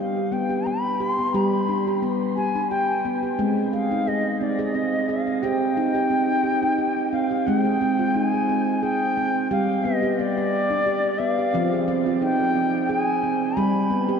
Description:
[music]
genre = world meditative, meditative tuned percussion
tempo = 88 BPM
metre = 3/4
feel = swing 54% on 16ths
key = G phrygian dominant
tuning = A4 = 440 Hz
[part]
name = bansuri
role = melody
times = 0.0-14.2 s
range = D5 to C6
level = -24 LUFS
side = left 2 dB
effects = shimmer reverb, tape echo
[part]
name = handpan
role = arpeggios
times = 0.0-14.2 s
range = F3 to Ab4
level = -22 LUFS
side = right 1 dB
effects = shimmer reverb, tape echo
[sound]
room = wet cathedral reverb, RT60 4.8 s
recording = dreamy mix soaked in reverb, cassette tape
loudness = -20 LUFS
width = side -6 dB against mid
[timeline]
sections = 0.0-7.5 A section; 7.5-14.2 B section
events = none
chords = 0.0 G; 3.4 Ab; 5.4 Cm; 7.5 Ab; 9.5 G; 11.5 Fm; 13.6 G

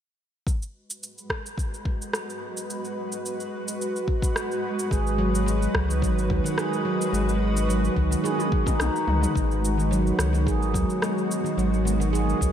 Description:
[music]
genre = organic downtempo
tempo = 108 BPM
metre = 4/4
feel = straight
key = G# minor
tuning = A4 = 440 Hz
[part]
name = granular cloud pad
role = sustained chords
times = 1.3-12.5 s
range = G#3 to B4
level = -29 LUFS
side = right 1 dB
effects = built-in reverb, sidechain pumping
[part]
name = deep house drum kit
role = drums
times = 0.5-12.5 s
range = cabasa, rim click, toms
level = -32 LUFS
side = equal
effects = overdrive, small room ambience
[part]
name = electronic kick drum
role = drums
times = 0.5-12.5 s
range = none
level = -26 LUFS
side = left 1 dB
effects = small room ambience
[part]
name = handpan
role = arpeggios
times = 4.9-12.5 s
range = D#3 to G#4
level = -26 LUFS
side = right 1 dB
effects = ping-pong delay
[part]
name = warm sub bass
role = bass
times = 4.9-12.5 s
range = G#1 to D#2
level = -25 LUFS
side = equal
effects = sidechain pumping
[sound]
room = wet cathedral reverb, RT60 6.4 s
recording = dreamy mix soaked in reverb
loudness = -22 LUFS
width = side -9 dB against mid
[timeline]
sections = 0.5-9.4 A section; 9.4-12.5 B section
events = drum fill 8.2-9.4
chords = 0.5 G#m7

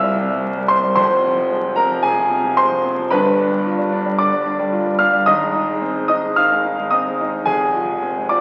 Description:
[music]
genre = classical, virtuoso piano study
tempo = 111 BPM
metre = 4/4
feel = rubato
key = unclear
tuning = A4 = 440 Hz
[part]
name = warm concert grand piano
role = solo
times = 0.0-8.4 s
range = F1 to F6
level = -18 LUFS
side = equal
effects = none
[sound]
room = wet recital hall reverb, RT60 1.9 s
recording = very old 78 rpm record, vinyl crackle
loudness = -18 LUFS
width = mono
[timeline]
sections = 0.0-8.4 A section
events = none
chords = 0.0 C7; 1.0 Fm; 3.1 G7; 5.3 Ab; 7.5 Fm

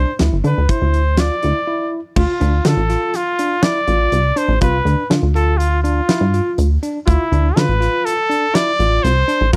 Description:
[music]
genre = progressive instrumental, band music in an uneven meter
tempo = 122 BPM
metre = 5/4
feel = straight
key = D dorian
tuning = A4 = 441 Hz
[part]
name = clear trumpet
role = melody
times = 0.0-9.6 s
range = E4 to D5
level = -21 LUFS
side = equal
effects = none
[part]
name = bell-like tine electric piano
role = arpeggios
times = 0.0-9.6 s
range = D4 to F4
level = -25 LUFS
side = equal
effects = none
[part]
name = plucky analog bass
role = bass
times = 0.0-9.6 s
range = G1 to D3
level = -18 LUFS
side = equal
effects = none
[part]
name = huge arena drum kit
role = drums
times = 0.2-9.6 s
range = crash cymbal, hi-hat, kick drum, snare drum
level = -22 LUFS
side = equal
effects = none
[sound]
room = small room reverb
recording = dry, close 1970s-style studio recording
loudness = -16 LUFS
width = mono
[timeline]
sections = 0.0-2.2 A section; 2.2-9.6 B section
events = break 1.7-2.2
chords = 0.0 Am (rootless); 2.2 Dm

